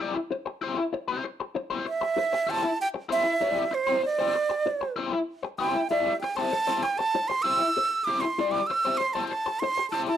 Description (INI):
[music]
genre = funk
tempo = 97 BPM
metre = 4/4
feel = straight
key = unclear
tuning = A4 = 445 Hz
[part]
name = raw garage guitar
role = accompaniment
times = 0.0-10.1 s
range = E4 to D5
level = -29 LUFS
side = left 5 dB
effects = wah, overdrive
[part]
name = breathy silver concert flute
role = melody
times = 1.9-10.2 s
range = C5 to E6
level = -25 LUFS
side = right 4 dB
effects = none
[sound]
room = moderate studio reverb, RT60 0.6 s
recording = dark, warm production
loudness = -24 LUFS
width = side -10 dB against mid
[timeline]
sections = 0.0-1.6 A section; 1.6-10.2 B section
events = flute solo 1.6-10.2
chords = 0.0 C/E